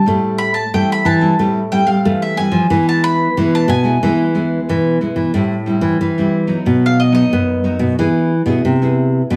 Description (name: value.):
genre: samba and choro.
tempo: 91 BPM.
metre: 4/4.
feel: straight.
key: A minor.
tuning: A4 = 440 Hz.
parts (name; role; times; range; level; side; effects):
mandolin; melody; 0.0-7.9 s; D#5 to B5; -21 LUFS; equal; none.
nylon-string guitar; accompaniment; 0.0-9.4 s; F#2 to G#4; -20 LUFS; equal; none.
nylon-string guitar; bass; 0.0-9.4 s; A2 to B3; -18 LUFS; equal; none.
room: wet studio reverb, RT60 0.6 s.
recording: heard from further back in the room.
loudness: -15 LUFS.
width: mono.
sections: 0.0-5.4 A section; 5.4-9.4 B section.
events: mandolin solo 5.4-9.4.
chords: 0.1 Am7; 2.7 E; 5.4 Am7; 6.7 B; 8.0 E.